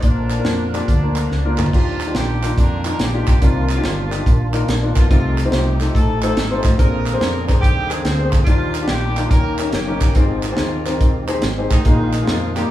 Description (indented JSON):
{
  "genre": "uptempo gospel",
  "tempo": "142 BPM",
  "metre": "4/4",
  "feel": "swing 66% on 8ths",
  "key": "Eb major",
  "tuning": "A4 = 440 Hz",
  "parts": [
    { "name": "mellow alto saxophone", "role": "melody", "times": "0.0-1.6 s", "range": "D4", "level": "-33 LUFS", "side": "equal", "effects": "none" },
    { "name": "warm horn section", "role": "melody", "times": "0.0-12.7 s", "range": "D3 to C5", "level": "-26 LUFS", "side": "equal", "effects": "none" },
    { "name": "warm grand piano", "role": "accompaniment", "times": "0.0-12.7 s", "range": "Ab2 to C5", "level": "-23 LUFS", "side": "left 3 dB", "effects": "none" },
    { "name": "percussive tonewheel organ", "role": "sustained chords", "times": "0.0-12.7 s", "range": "D3 to Bb5", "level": "-28 LUFS", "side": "right 2 dB", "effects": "slow rotary speaker, chorus vibrato" },
    { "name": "fingered electric bass", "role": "bass", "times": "0.0-12.6 s", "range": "Gb1 to F2", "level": "-21 LUFS", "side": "equal", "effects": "none" },
    { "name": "tight funk drum kit", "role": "drums", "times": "0.0-12.6 s", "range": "crash cymbal, hi-hat, kick drum, snare drum, toms", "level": "-18 LUFS", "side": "equal", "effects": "none" },
    { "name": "group handclap", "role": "percussion", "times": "0.3-12.6 s", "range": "none", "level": "-32 LUFS", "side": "right 5 dB", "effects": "none" }
  ],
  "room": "light reverb",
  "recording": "band playing live in one room, studio ambience",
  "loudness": "-15 LUFS",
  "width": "side -13 dB against mid",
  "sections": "0.0-1.7 A section; 1.7-12.7 B section",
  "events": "tonewheel organ fill 0.9-1.7; drum fill 1.3-1.7",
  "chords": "0.0 Bb; 1.7 Ebmaj9; 3.4 Cm11; 5.1 F9/C; 6.8 Bb9; 8.5 Ebmaj9; 9.3 Eb7; 10.2 Abmaj7; 11.9 Bb7sus4"
}